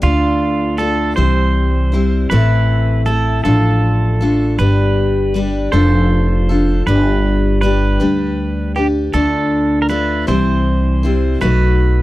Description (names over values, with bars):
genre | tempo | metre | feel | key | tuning
acoustic folk duo or small band | 53 BPM (dotted quarters) | 6/8 | straight | D dorian | A4 = 440 Hz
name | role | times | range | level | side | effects
pedal steel guitar | second line | 0.0-12.0 s | F4 to C5 | -21 LUFS | right 4 dB | none
picked steel-string acoustic guitar | accompaniment | 0.0-12.0 s | A2 to C5 | -16 LUFS | left 2 dB | none
upright bass | bass | 0.0-12.0 s | F1 to D2 | -16 LUFS | equal | none
room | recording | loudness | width
little or no reverb | dry, close 1970s-style studio recording | -12 LUFS | side -16 dB against mid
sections
0.0-12.0 A section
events
none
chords
0.0 Dm; 1.2 C; 2.3 Am; 3.4 Dm/A; 4.6 G; 5.7 Dm/F; 6.9 G; 9.1 Dm; 10.3 C; 11.4 B7